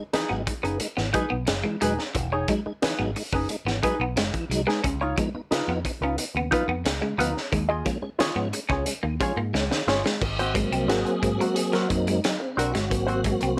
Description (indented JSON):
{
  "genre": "funk",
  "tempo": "89 BPM",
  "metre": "4/4",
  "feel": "straight",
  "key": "unclear",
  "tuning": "A4 = 440 Hz",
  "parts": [
    { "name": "mellow tonewheel organ", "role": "stabs", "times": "0.0-13.6 s", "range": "Db3 to Ab4", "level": "-31 LUFS", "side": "equal", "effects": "chorus vibrato, fast rotary speaker" },
    { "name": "hollow-body jazz guitar", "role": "accompaniment", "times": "0.1-13.6 s", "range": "C4 to Eb5", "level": "-29 LUFS", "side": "equal", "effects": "wah" },
    { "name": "picked electric bass with an envelope filter", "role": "bass", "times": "0.1-13.6 s", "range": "D#1 to Ab2", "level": "-33 LUFS", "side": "equal", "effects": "none" },
    { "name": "crunchy breakbeat drum kit", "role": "drums", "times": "0.1-13.6 s", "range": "crash cymbal, hi-hat, kick drum, snare drum", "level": "-31 LUFS", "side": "equal", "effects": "none" },
    { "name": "semi-hollow electric guitar", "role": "riff", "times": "0.3-13.5 s", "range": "E3 to Db4", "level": "-32 LUFS", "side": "equal", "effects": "none" }
  ],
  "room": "light reverb",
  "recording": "none",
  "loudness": "-26 LUFS",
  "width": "mono",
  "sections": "0.0-10.2 A section; 10.2-13.6 B section",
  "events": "drum fill 9.6-10.2; tonewheel organ solo 10.2-13.6",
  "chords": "0.0 Emaj7; 4.8 Db9; 7.5 Eb9sus4; 10.2 Ab9"
}